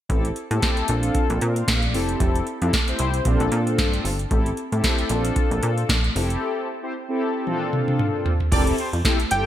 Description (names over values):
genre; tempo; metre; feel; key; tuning
early-eighties boogie funk; 114 BPM; 4/4; swing 56% on 16ths; F major; A4 = 440 Hz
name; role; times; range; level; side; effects
mellow synth brass; accompaniment; 0.1-9.5 s; Bb2 to F5; -24 LUFS; left 2 dB; chorus, tremolo
plucky analog bass; bass; 0.1-9.5 s; F1 to Bb2; -24 LUFS; equal; none
booming analog drum machine; drums; 0.1-9.4 s; crash cymbal, hi-hat, kick drum, snare drum, toms; -22 LUFS; equal; overdrive, gated reverb
warm horn section; second line; 8.5-8.9 s; C4 to D5; -27 LUFS; right 1 dB; none
fat analog lead; melody; 9.3-9.5 s; G5; -20 LUFS; right 2 dB; none
room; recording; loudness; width
moderate lush hall reverb, RT60 1.8 s; bright 1980s-style digital production; -20 LUFS; side -12 dB against mid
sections
0.1-8.5 A section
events
break 6.4-8.5; drum fill 7.5-8.5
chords
0.1 Am7; 0.9 Bbmaj7; 1.9 Fmaj7; 3.3 Bbmaj7; 4.3 Am7; 5.1 Bbmaj7; 6.2 Fmaj7; 7.5 Bbmaj7; 8.5 Fmaj9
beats
| 0.10 0.62 1.15 1.68 | 2.20 2.73 3.26 3.78 | 4.31 4.83 5.36 5.89 | 6.41 6.94 7.47 7.99 | 8.52 9.05